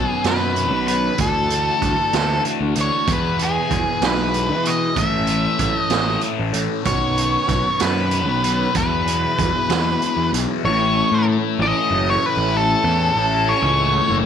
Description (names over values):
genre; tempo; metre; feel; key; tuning
psychedelic rock; 64 BPM (dotted quarters); 6/8; straight; unclear; A4 = 441 Hz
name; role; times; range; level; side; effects
octave-fuzz lead guitar; melody; 0.0-14.2 s; G#4 to E5; -20 LUFS; left 1 dB; distortion, slapback echo
mellow tonewheel organ; sustained chords; 0.0-14.3 s; D#3 to B4; -28 LUFS; right 15 dB; slow rotary speaker, overdrive, chorus vibrato
thick fuzz guitar; riff; 0.0-14.3 s; E2 to E4; -24 LUFS; left 13 dB; distortion, phaser
fuzz picked electric bass; bass; 0.0-14.3 s; F#1 to E3; -22 LUFS; equal; overdrive
raw garage drum kit; drums; 0.2-10.5 s; hi-hat, kick drum, snare drum; -24 LUFS; right 6 dB; none
room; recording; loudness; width
small room ambience; 1960s-style stereo with parts hard left and right; -16 LUFS; side -8 dB against mid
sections
0.0-10.6 A section; 10.6-14.3 B section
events
none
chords
0.0 Badd9; 1.2 Dadd9; 3.1 E; 5.0 A; 6.9 Badd9; 8.8 Eadd9; 10.6 A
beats
0.25 | 1.19 2.14 | 3.08 4.03 | 4.97 5.92 | 6.87 7.81 | 8.76 9.70 | 10.65 11.59 | 12.54 13.48